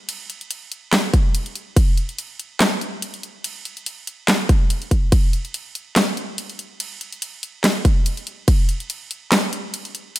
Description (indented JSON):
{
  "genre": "dubstep",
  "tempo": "143 BPM",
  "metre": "4/4",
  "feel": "swing 55% on 16ths, half-time",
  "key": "none",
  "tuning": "none",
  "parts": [
    { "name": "dubstep drum kit", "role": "drums", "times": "0.1-10.2 s", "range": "crash cymbal, handclaps, hi-hat, snare drum", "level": "-22 LUFS", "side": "equal", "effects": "none" },
    { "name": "electronic kick drum", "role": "drums", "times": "1.1-1.9, 4.5-5.2, 7.8-8.6 s", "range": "none", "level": "-16 LUFS", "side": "equal", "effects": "none" }
  ],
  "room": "digital ambience",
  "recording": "none",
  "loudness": "-19 LUFS",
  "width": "side -15 dB against mid",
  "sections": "0.0-10.2 A section",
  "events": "none",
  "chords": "none"
}